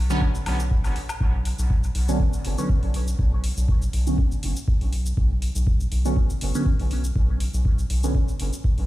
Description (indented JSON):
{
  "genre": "dub techno",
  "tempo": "121 BPM",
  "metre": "4/4",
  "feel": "swing 54% on 16ths",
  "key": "B minor",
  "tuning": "A4 = 441 Hz",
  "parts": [
    { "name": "round analog bass", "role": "bass", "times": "0.0-8.9 s", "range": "F#1 to B1", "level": "-24 LUFS", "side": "equal", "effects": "sidechain pumping" },
    { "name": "resonant sweep polysynth", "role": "stabs", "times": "0.1-8.1 s", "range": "D3 to C#4", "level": "-29 LUFS", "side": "right 2 dB", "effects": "chorus, phaser, sidechain pumping, dub echo" },
    { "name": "electronic shaker and hi-hat", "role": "drums", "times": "0.1-8.9 s", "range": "none", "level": "-37 LUFS", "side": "left 1 dB", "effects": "none" },
    { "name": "electronic kick drum", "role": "drums", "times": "0.2-8.8 s", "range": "none", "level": "-23 LUFS", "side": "equal", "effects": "none" },
    { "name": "woodblock", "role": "percussion", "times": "0.2-1.2 s", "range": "none", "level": "-38 LUFS", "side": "left 2 dB", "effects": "overdrive, sidechain pumping on perc, sidechain pumping on toms, dub echo" }
  ],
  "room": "digital ambience",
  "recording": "played on a big sound system in a bare room, large studio reverb",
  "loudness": "-20 LUFS",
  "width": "side -16 dB against mid",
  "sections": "0.0-1.2 A section; 1.2-8.9 A section",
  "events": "filter sweep on analog polysynth 1.2-8.9",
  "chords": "0.0 B5"
}